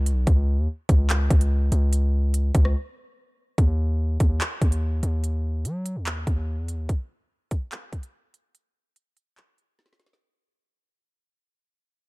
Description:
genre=hip hop, drill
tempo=145 BPM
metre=4/4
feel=half-time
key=Eb phrygian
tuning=A4 = 443 Hz
part: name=hard-hitting 808-style bass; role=bass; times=0.0-6.9 s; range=B1 to Gb3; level=-22 LUFS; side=equal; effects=none
part: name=drill drum kit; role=drums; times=0.1-10.2 s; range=handclaps, hi-hat, kick drum, rim click, snare drum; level=-22 LUFS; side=equal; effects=none
room=little or no reverb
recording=dark, warm production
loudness=-21 LUFS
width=side -25 dB against mid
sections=0.0-3.6 A section; 3.6-10.2 B section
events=break 2.8-3.6; fade-out 3.6-10.2; drum fill 9.8-10.2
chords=none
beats=| 0.27 0.69 1.10 1.51 | 1.93 2.34 2.75 3.17 | 3.58 4.00 4.41 4.82 | 5.24 5.65 6.06 6.48 | 6.89 7.30 7.72 8.13 | 8.55 8.96 9.37 9.79

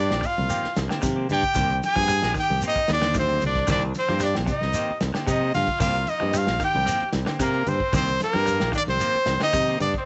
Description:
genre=afrobeat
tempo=113 BPM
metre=4/4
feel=straight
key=C minor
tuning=A4 = 441 Hz
part: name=bright trumpet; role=melody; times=0.0-10.1 s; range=Bb4 to Ab5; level=-26 LUFS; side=equal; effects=none
part: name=raspy tenor saxophone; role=second line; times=0.0-10.1 s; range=Bb3 to Ab4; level=-34 LUFS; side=equal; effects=none
part: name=electric guitar at the edge of break-up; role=arpeggios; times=0.0-9.8 s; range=C3 to G3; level=-35 LUFS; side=equal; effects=none
part: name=modern bright fingered electric bass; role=bass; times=0.0-9.9 s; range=Bb1 to C3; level=-28 LUFS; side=equal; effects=none
part: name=semi-hollow electric guitar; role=stabs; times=0.1-9.8 s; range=Eb3 to G4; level=-37 LUFS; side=equal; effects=none
part: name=warm soul drum kit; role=drums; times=0.1-10.1 s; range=hi-hat, kick drum, snare drum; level=-33 LUFS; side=equal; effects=none
part: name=shekere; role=percussion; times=0.2-9.9 s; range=none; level=-38 LUFS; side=equal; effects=none
part: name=congas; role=percussion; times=0.4-9.9 s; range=none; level=-36 LUFS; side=equal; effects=none
room=light reverb, small room ambience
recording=nothing above 8.0 kHz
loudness=-23 LUFS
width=mono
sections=0.0-10.1 A section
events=none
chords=0.0 Cm7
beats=0.49 1.02 | 1.55 2.08 2.62 3.15 | 3.68 4.21 4.74 5.27 | 5.80 6.34 6.87 7.40 | 7.94 8.47 9.00 9.54

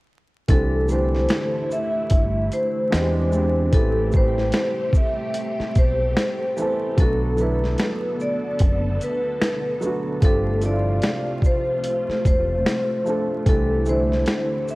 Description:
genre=lo-fi hip hop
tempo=74 BPM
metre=4/4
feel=swing 58% on 16ths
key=unclear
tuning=A4 = 437 Hz
part: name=vibraphone with medium hard mallets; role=melody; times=0.5-14.8 s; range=A4 to E5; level=-24 LUFS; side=left 1 dB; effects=low-pass filter, cassette tape
part: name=warm upright piano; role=accompaniment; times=0.5-14.8 s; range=E3 to A4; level=-28 LUFS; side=right 2 dB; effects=low-pass filter, cassette tape
part: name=string machine, cellos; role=sustained chords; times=0.5-14.8 s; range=C3 to A4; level=-29 LUFS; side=equal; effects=phaser, ensemble chorus, low-pass filter, cassette tape
part: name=deep dub fingered electric bass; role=bass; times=0.5-14.2 s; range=E1 to E2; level=-23 LUFS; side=equal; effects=none
part: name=boom bap sampler-style drum kit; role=drums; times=0.5-14.8 s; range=finger snaps, hi-hat, kick drum, shaker, snare drum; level=-20 LUFS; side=equal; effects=cassette tape
room=digital ambience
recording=home recording on cassette, vinyl crackle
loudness=-19 LUFS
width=side -21 dB against mid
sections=0.5-14.8 A section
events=none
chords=0.5 C69; 2.9 E7alt; 3.7 Am9; 7.0 Bm7; 10.2 G9sus4; 13.5 C69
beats=| 0.49 1.30 2.11 2.92 | 3.73 4.54 5.35 6.16 | 6.97 7.79 8.60 9.41 | 10.22 11.03 11.84 12.65 | 13.46 14.27

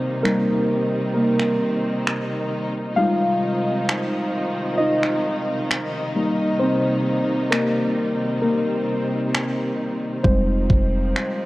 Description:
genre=contemporary R&B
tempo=66 BPM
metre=4/4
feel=straight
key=unclear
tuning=A4 = 439 Hz
part: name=muted felt-like synth keys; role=accompaniment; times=0.0-11.5 s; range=G3 to F5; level=-21 LUFS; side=equal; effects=chorus
part: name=warm studio string section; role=sustained chords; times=0.0-11.5 s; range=C3 to Eb4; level=-25 LUFS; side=equal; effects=sidechain pumping
part: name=pop drum kit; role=drums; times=0.3-11.4 s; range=finger snaps, kick drum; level=-23 LUFS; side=equal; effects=overdrive
part: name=clean 808-style bass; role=bass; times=10.2-11.1 s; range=F1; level=-22 LUFS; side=equal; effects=none
room=light reverb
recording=worn, warbling old tape, cassette tape, warbly pitch drift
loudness=-19 LUFS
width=side -18 dB against mid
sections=0.0-11.5 A section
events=break 0.0-10.2; synth keys solo 0.0-11.5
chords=0.0 Cm7; 3.0 Fm7; 6.2 Cm7; 10.2 Fm7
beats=0.24 1.15 2.06 | 2.97 3.88 4.79 5.70 | 6.61 7.52 8.43 9.34 | 10.24 11.15

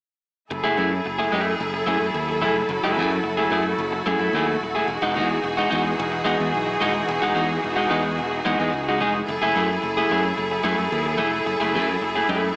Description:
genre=disco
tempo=110 BPM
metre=4/4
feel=straight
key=F# dorian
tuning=A4 = 438 Hz
part: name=electric guitar at the edge of break-up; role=accompaniment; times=0.5-12.5 s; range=G#3 to A4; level=-26 LUFS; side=equal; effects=spring reverb
part: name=bright studio string section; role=sustained chords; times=0.5-12.6 s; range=E3 to A4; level=-26 LUFS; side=equal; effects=none
part: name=modern bright fingered electric bass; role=bass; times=0.5-12.5 s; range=D#1 to F#2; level=-32 LUFS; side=equal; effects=none
room=moderate large studio reverb, RT60 1.1 s, small room reverb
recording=small speaker sound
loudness=-23 LUFS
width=mono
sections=0.5-12.6 A section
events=none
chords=0.5 F#m9; 4.9 Emaj9; 9.3 F#m9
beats=| 0.51 1.05 1.60 2.15 | 2.70 3.25 3.79 4.34 | 4.89 5.44 5.99 6.54 | 7.08 7.63 8.18 8.73 | 9.27 9.82 10.37 10.91 | 11.46 12.01 12.56

